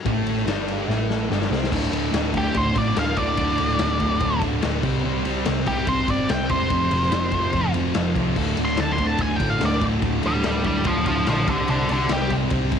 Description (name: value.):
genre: garage rock duo or trio.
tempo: 144 BPM.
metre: 4/4.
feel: straight.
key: D minor.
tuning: A4 = 441 Hz.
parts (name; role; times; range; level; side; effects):
thick fuzz guitar; riff; 0.1-12.8 s; D2 to C4; -23 LUFS; right 1 dB; distortion.
hollow-body short-scale picked electric bass; bass; 0.1-12.8 s; D1 to C2; -27 LUFS; right 1 dB; none.
raw garage drum kit; drums; 0.1-12.8 s; crash cymbal, kick drum, ride cymbal, snare drum; -26 LUFS; left 4 dB; none.
octave-fuzz lead guitar; melody; 2.4-12.3 s; G4 to C6; -24 LUFS; equal; distortion.
room: small room ambience.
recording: 1960s-style stereo.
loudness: -19 LUFS.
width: side -7 dB against mid.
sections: 0.0-1.7 A section; 1.7-12.8 B section.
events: drum fill 0.9-1.7; lead electric guitar solo 1.7-12.8.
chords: 0.0 N.C.; 1.7 D5; 4.8 C5; 6.7 F5; 8.4 D5; 11.5 C5.